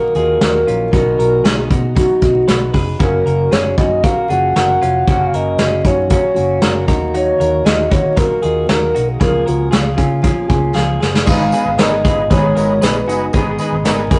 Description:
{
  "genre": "jangly indie pop",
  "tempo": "116 BPM",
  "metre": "4/4",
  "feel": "straight",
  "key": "F# major",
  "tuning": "A4 = 440 Hz",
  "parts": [
    { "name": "warbly nostalgic lead", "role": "melody", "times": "0.0-14.2 s", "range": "E#4 to F#5", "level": "-19 LUFS", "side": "equal", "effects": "chorus" },
    { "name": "fingerpicked steel-string acoustic guitar", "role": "accompaniment", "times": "0.0-14.2 s", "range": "F#2 to G#4", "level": "-23 LUFS", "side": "equal", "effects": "none" },
    { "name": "direct-recorded clean electric guitar", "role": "arpeggios", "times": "0.0-14.2 s", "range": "C#4 to B4", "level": "-26 LUFS", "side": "equal", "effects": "none" },
    { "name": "vintage muted fingered electric bass", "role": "bass", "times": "0.1-14.2 s", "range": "E#1 to D#3", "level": "-23 LUFS", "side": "equal", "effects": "none" },
    { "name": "soft brush drum kit", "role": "drums", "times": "0.1-14.2 s", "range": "crash cymbal, hi-hat, kick drum, snare drum", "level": "-18 LUFS", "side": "equal", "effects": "none" },
    { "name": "overdriven combo organ", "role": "accompaniment", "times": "11.3-14.2 s", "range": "D#4 to B4", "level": "-25 LUFS", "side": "equal", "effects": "none" },
    { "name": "tambourine", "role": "percussion", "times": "11.3-14.2 s", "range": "none", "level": "-40 LUFS", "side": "equal", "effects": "none" }
  ],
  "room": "light reverb",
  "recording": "rough rehearsal-room recording, tube saturation, vinyl crackle, nothing above 10.5 kHz",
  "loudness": "-14 LUFS",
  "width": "mono",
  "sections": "0.0-11.3 A section; 11.3-14.2 B section",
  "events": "drum fill 10.8-11.3",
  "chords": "0.0 D#m; 0.9 B; 3.0 F#; 6.9 D#m; 9.2 C#6; 11.3 G#m",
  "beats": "0.41 | 0.93 1.45 1.96 2.48 | 3.00 3.52 4.03 4.55 | 5.07 5.59 6.10 6.62 | 7.14 7.66 8.17 8.69 | 9.21 9.73 10.24 10.76 | 11.28 11.79 12.31 12.83 | 13.34 13.86"
}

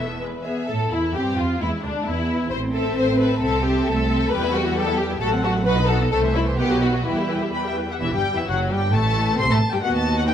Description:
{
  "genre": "quick classical-period movement for string orchestra",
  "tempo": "132 BPM",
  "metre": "2/4",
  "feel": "straight",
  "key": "A minor, E minor from 4.3 s",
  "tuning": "A4 = 440 Hz",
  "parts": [
    { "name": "dark symphonic violin section", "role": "melody", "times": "0.0-10.3 s", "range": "D4 to C6", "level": "-28 LUFS", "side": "left 4 dB", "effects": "none" },
    { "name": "warm symphonic violin section", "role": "second line", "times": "0.0-10.3 s", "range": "D4 to E5", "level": "-25 LUFS", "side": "left 3 dB", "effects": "none" },
    { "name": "rich symphonic viola section", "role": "accompaniment", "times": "0.0-10.3 s", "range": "D#3 to C5", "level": "-27 LUFS", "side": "equal", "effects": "none" },
    { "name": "rich symphonic cello section", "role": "bass", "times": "0.0-10.3 s", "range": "D#2 to C4", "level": "-25 LUFS", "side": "right 2 dB", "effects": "none" },
    { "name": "warm symphonic double bass section", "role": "bass", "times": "0.0-10.3 s", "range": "E1 to A2", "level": "-25 LUFS", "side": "right 2 dB", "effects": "none" }
  ],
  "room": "moderate recital hall reverb, RT60 1.7 s",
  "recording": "none",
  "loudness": "-19 LUFS",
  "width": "side -9 dB against mid",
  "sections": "0.7-8.0 A section; 8.0-10.3 B section",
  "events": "none",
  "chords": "0.2 E; 0.7 Am; 1.6 E7; 2.5 Am; 3.4 Am/C; 4.3 Em; 5.2 F#dim/A; 5.7 B; 6.1 Am/C; 6.6 B; 7.1 Em; 8.9 Am",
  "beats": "0.22 | 0.69 1.15 | 1.60 2.06 | 2.51 2.96 | 3.42 3.87 | 4.32 4.76 | 5.21 5.66 | 6.12 6.59 | 7.06 7.53 | 8.00 8.47 | 8.93 9.39 | 9.84 10.30"
}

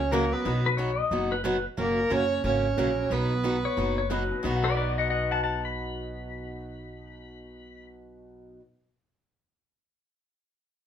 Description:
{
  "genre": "country, western swing",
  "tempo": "180 BPM",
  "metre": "4/4",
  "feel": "swing 64% on 8ths",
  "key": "B major",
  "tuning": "A4 = 440 Hz",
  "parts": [
    { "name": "dark fiddle", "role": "melody", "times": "0.0-4.1 s", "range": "A#4 to C#5", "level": "-28 LUFS", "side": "right 3 dB", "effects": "plate reverb" },
    { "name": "breathy clarinet", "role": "second line", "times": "0.0-4.1 s", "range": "A#3 to C#4", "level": "-32 LUFS", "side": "right 3 dB", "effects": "none" },
    { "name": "upright bass", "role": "bass", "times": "0.0-8.6 s", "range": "F#1 to C#2", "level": "-31 LUFS", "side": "equal", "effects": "none" },
    { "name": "bright upright piano", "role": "accompaniment", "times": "0.1-8.7 s", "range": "B2 to F#5", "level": "-36 LUFS", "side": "left 6 dB", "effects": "none" },
    { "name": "picked steel-string acoustic guitar", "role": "accompaniment", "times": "0.1-8.6 s", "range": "B2 to F#4", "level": "-32 LUFS", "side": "right 2 dB", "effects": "none" },
    { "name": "pedal steel guitar", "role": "second line", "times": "0.7-1.6, 3.7-7.9 s", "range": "B4 to B5", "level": "-29 LUFS", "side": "left 5 dB", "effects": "none" }
  ],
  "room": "moderate club reverb, RT60 0.8 s",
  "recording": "none",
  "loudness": "-24 LUFS",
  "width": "side -9 dB against mid",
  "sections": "0.0-1.8 A section; 1.8-4.4 B section; 4.4-7.1 C section",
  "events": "none",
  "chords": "0.4 B; 1.8 F#; 3.1 B",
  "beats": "0.12 | 0.45 0.78 1.11 1.44 | 1.78 2.11 2.44 2.77 | 3.11 3.44 3.77 4.10 | 4.44 4.77 5.10 5.43 | 5.77 6.10 6.43 6.76"
}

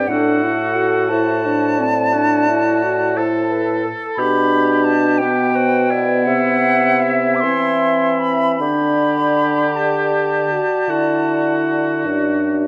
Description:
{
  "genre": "classical, slow romantic movement for wind quintet",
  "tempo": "50-61 BPM (dotted quarters)",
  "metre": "12/8",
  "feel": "rubato",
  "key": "unclear",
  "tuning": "A4 = 444 Hz",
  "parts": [
    { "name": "bright silver concert flute", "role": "melody", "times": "0.0-12.1 s", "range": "E5 to D6", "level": "-23 LUFS", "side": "equal", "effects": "none" },
    { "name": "warm oboe", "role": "second line", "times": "0.0-12.7 s", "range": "E4 to A4", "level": "-25 LUFS", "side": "equal", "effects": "none" },
    { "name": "clear French horn", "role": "accompaniment", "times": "0.0-12.7 s", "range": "B3 to G4", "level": "-22 LUFS", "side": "equal", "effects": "none" },
    { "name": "mellow clarinet", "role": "accompaniment", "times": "0.0-12.6 s", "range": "G4 to E5", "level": "-25 LUFS", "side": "equal", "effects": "none" },
    { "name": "mellow bassoon", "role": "bass", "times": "0.0-12.7 s", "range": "F#2 to E3", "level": "-24 LUFS", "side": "equal", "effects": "none" }
  ],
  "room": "moderate recital hall reverb, RT60 1.5 s",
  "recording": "none",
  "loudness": "-17 LUFS",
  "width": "mono",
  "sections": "0.0-12.7 A section",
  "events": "none",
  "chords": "0.1 D7/A; 4.2 G/B; 6.3 C; 8.6 Dsus4; 10.9 D",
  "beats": "| 0.09 1.10 2.14 3.17 | 4.19 5.22 6.28 7.45 | 8.61 9.77 10.89 12.05"
}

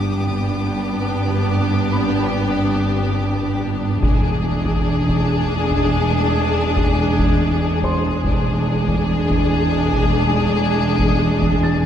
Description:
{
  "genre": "cinematic, suspense film score",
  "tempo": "71 BPM",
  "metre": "5/4",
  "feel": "straight",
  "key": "unclear",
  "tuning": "A4 = 440 Hz",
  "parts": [
    { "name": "clear chamber violin section", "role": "melody", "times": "0.0-11.9 s", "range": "G4 to G#4", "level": "-25 LUFS", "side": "left 3 dB", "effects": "none" },
    { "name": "clear studio violin section", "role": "second line", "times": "0.0-11.9 s", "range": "D4", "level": "-24 LUFS", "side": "left 1 dB", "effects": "none" },
    { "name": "rich chamber viola section", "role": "accompaniment", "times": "0.0-11.9 s", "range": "G#3 to B3", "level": "-24 LUFS", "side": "equal", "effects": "none" },
    { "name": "dark chamber cello section", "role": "bass", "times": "0.0-11.9 s", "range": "E2 to G2", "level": "-23 LUFS", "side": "right 1 dB", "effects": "none" },
    { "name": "rich chamber double bass section", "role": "bass", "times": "0.0-11.9 s", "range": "E1 to G1", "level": "-23 LUFS", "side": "right 2 dB", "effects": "none" },
    { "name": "felt-muted upright piano", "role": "texture", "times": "0.0-11.9 s", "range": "C5 to A6", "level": "-33 LUFS", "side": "left 1 dB", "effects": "none" },
    { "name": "rich chamber violin section", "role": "texture", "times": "0.0-3.6 s", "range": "D6 to D#6", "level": "-35 LUFS", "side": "left 2 dB", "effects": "none" },
    { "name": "taiko ensemble", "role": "drums", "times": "4.0-11.9 s", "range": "none", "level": "-24 LUFS", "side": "equal", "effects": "none" }
  ],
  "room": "wet concert hall reverb, RT60 2.0 s",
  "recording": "recorded in a church or concert hall, lossy compression artefacts",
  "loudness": "-16 LUFS",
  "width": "side -9 dB against mid",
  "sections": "0.0-11.9 A section",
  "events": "none",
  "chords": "0.0 G; 4.0 E7",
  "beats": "0.66 1.50 2.35 3.19 | 4.03 4.87 5.71 6.56 7.40 | 8.25 9.09 9.93 10.77 11.62"
}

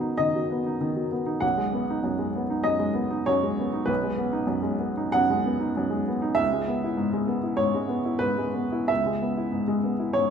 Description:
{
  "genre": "neoclassical minimalist piano",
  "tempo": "97 BPM",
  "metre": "4/4",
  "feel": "rubato",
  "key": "unclear",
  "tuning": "A4 = 439 Hz",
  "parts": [
    { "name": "warm upright piano", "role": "solo", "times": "0.0-10.3 s", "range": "B1 to F#5", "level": "-23 LUFS", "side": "equal", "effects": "none" }
  ],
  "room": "moderate scoring stage reverb, RT60 1.7 s",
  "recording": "minimal, uncompressed stereo recording",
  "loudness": "-23 LUFS",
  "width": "side -7 dB against mid",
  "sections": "0.0-10.3 A section",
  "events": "none",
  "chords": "0.0 G#m7; 1.4 B6; 6.4 C#m7",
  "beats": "0.17 0.81 | 1.43 2.04 2.65 3.27 | 3.89 4.50 5.15 5.77 | 6.39 7.00 7.61 8.22 | 8.90 9.54 10.16"
}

